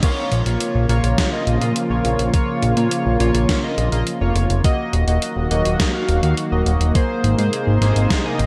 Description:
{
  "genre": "synthwave",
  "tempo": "104 BPM",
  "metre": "4/4",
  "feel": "straight",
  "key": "Bb minor",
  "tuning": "A4 = 440 Hz",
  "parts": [
    { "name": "lush unison pad", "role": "sustained chords", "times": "0.0-8.5 s", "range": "C3 to Gb4", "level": "-26 LUFS", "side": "equal", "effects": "chorus, sidechain pumping" },
    { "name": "chorused polysynth", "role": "stabs", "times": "0.0-8.5 s", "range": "Bb3 to F5", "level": "-25 LUFS", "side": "equal", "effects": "cassette tape, tape echo" },
    { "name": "electronic kick drum", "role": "drums", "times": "0.0-8.2 s", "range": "none", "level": "-21 LUFS", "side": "equal", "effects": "none" },
    { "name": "gated 80s digital drum machine", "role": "drums", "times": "0.0-8.5 s", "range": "crash cymbal, hi-hat, snare drum", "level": "-28 LUFS", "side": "equal", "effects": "gated reverb, gated reverb snare" },
    { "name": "fat analog bass", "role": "bass", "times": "0.3-8.5 s", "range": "Eb1 to Bb2", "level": "-20 LUFS", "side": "equal", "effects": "sidechain pumping" }
  ],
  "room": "light reverb, digital ambience",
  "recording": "dark, warm production",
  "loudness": "-19 LUFS",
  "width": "mono",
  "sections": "0.0-8.5 A section",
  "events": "none",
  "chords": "0.0 Bbm; 4.6 Ebm; 7.0 Abadd9"
}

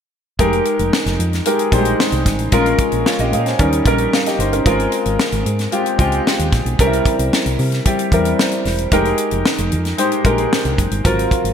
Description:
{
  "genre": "polished 1980s jazz-funk pop",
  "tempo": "113 BPM",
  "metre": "4/4",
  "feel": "straight",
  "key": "F minor",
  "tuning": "A4 = 441 Hz",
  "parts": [
    { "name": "warm grand piano", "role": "accompaniment", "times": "0.4-11.5 s", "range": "Gb3 to Ab5", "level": "-17 LUFS", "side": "left 1 dB", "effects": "analog chorus" },
    { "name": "fingered electric bass", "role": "bass", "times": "0.4-11.5 s", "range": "E1 to C3", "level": "-20 LUFS", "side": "equal", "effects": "none" },
    { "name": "tight funk drum kit", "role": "drums", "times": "0.4-11.5 s", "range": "hi-hat, kick drum, snare drum", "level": "-19 LUFS", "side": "equal", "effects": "gated reverb" }
  ],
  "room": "moderate lush hall reverb, RT60 1.9 s, small room ambience",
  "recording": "bright 1980s-style digital production",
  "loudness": "-14 LUFS",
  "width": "side -8 dB against mid",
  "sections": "0.4-11.5 A section",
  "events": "none",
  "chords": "0.4 Fm11; 2.5 Bbm7; 3.6 Eb7; 4.7 Ab69; 6.8 C7; 8.9 Fm11"
}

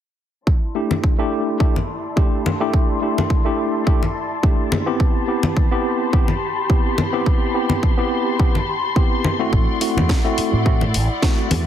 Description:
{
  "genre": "nu-disco, nu disco",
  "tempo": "106 BPM",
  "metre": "4/4",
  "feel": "swing 54% on 16ths",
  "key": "unclear",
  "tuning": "A4 = 440 Hz",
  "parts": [
    { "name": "dark symphonic string section", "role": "sustained chords", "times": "0.5-11.7 s", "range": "E4 to C6", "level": "-26 LUFS", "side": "left 3 dB", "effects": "sidechain pumping, low-pass filter" },
    { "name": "electronic kick drum", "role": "drums", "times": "0.5-11.3 s", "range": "none", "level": "-17 LUFS", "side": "equal", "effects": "none" },
    { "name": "tine electric piano", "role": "accompaniment", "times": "0.7-11.6 s", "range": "A3 to G4", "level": "-22 LUFS", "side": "equal", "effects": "overdrive, fast stereo tremolo, sidechain pumping, slapback echo" },
    { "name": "congas", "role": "percussion", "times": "0.9-11.6 s", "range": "none", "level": "-23 LUFS", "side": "left 2 dB", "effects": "none" },
    { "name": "fingered electric bass with an envelope filter", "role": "bass", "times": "9.5-11.7 s", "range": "A1 to A2", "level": "-20 LUFS", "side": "equal", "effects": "tube saturation" },
    { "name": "house drum kit", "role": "drums", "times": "9.8-11.6 s", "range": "hi-hat, snare drum", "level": "-25 LUFS", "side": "left 1 dB", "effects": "none" }
  ],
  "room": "light reverb",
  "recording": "heavily compressed radio sound, multiband compression",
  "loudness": "-16 LUFS",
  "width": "side -10 dB against mid",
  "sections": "0.5-11.7 A section",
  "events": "filter sweep on string section 0.5-11.7",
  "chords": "0.5 C69; 5.0 Am9; 9.5 D9/A"
}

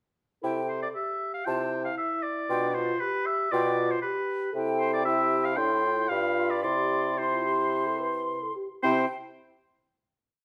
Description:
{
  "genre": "quick classical-period movement for wind quintet",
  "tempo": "108-118 BPM",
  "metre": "4/4",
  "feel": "straight",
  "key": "C major",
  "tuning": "A4 = 440 Hz",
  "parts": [
    { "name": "mellow silver concert flute", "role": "melody", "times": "0.4-9.1 s", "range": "G5 to C6", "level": "-34 LUFS", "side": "equal", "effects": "none" },
    { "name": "dark French horn", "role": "accompaniment", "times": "0.4-9.1 s", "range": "C4 to B4", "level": "-36 LUFS", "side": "equal", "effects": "none" },
    { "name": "warm clarinet", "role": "accompaniment", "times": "0.4-9.1 s", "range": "E4 to G4", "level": "-37 LUFS", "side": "equal", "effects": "none" },
    { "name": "clear bassoon", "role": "bass", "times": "0.4-9.1 s", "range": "G2 to C3", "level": "-32 LUFS", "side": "equal", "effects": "none" },
    { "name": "warm oboe", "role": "second line", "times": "0.7-9.1 s", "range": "B4 to G5", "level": "-32 LUFS", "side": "equal", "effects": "none" }
  ],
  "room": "wet stone room reverb, RT60 1.0 s",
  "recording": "none",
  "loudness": "-28 LUFS",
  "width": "mono",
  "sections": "0.4-8.8 A section; 8.8-10.4 final chord",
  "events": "none",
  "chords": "0.4 C; 1.5 C69; 2.5 G7/B; 4.5 C; 5.6 Am; 6.1 G7; 6.6 C"
}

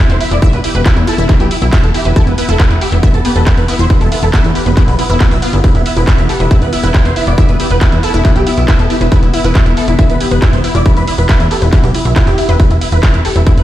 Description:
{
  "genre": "psychedelic trance",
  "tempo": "138 BPM",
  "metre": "4/4",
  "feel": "straight",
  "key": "E minor",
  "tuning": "A4 = 438 Hz",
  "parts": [
    { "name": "dense compressed supersaw", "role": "melody", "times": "0.0-13.6 s", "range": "B3 to E5", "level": "-19 LUFS", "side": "right 1 dB", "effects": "phaser, sidechain pumping, tape echo" },
    { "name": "evolving wavetable pad", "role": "sustained chords", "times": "0.0-13.6 s", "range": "E3 to E4", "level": "-21 LUFS", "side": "left 2 dB", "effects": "chorus, built-in reverb, sidechain pumping" },
    { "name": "wide unison pluck", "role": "riff", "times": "0.0-13.5 s", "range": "E4 to E5", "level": "-21 LUFS", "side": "equal", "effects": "auto-pan, sidechain pumping, tape echo" },
    { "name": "plucky analog bass", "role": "bass", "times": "0.1-13.6 s", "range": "E1 to E2", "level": "-14 LUFS", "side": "equal", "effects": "none" },
    { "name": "techno drum kit", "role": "drums", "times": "0.1-13.6 s", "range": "handclaps, hi-hat", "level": "-22 LUFS", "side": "equal", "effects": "none" },
    { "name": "electronic kick drum", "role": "drums", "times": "0.4-13.6 s", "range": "none", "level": "-11 LUFS", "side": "equal", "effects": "distortion" },
    { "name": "swell", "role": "sound effects", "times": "11.9-12.6 s", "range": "none", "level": "-24 LUFS", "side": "right 2 dB", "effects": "none" }
  ],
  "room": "digital ambience",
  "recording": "played on a big sound system in a bare room, stone room reverb",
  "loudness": "-9 LUFS",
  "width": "side -13 dB against mid",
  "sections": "0.0-13.6 A section",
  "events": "swell 11.9-12.6",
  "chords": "0.0 E5"
}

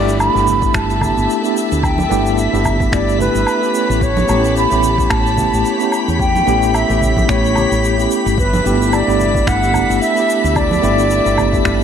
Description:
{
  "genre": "sunset chillout",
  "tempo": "110 BPM",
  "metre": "4/4",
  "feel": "swing 56% on 16ths",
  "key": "G lydian",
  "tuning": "A4 = 440 Hz",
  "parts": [
    { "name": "baroque flute", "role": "melody", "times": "0.0-11.8 s", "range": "B4 to B5", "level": "-18 LUFS", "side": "right 2 dB", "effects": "tape echo" },
    { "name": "tine electric piano", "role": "accompaniment", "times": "0.0-11.8 s", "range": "A3 to G4", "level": "-18 LUFS", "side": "equal", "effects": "medium stereo tremolo, auto-pan" },
    { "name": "rich symphonic string section", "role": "sustained chords", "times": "0.0-11.8 s", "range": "G4 to B5", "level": "-24 LUFS", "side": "left 2 dB", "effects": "none" },
    { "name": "woody fretless electric bass", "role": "bass", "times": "0.0-11.8 s", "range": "G1 to E2", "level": "-18 LUFS", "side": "equal", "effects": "wide subtle chorus" },
    { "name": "drifting glass-harmonics texture", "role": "texture", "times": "0.2-11.8 s", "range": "B6", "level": "-26 LUFS", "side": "left 2 dB", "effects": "chorus, built-in reverb" },
    { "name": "shaker, woodblock and finger snaps", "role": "drums", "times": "0.1-11.8 s", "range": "none", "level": "-24 LUFS", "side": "equal", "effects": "none" },
    { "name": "congas", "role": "percussion", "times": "0.5-11.5 s", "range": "none", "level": "-25 LUFS", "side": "right 4 dB", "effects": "none" },
    { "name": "electronic kick drum", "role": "drums", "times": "0.6-11.8 s", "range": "none", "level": "-20 LUFS", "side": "equal", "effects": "overdrive" }
  ],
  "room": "light reverb, studio ambience",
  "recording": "none",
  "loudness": "-12 LUFS",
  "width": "side -8 dB against mid",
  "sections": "0.0-11.8 A section",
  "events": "none",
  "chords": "0.0 G69; 3.7 A9; 8.4 G69"
}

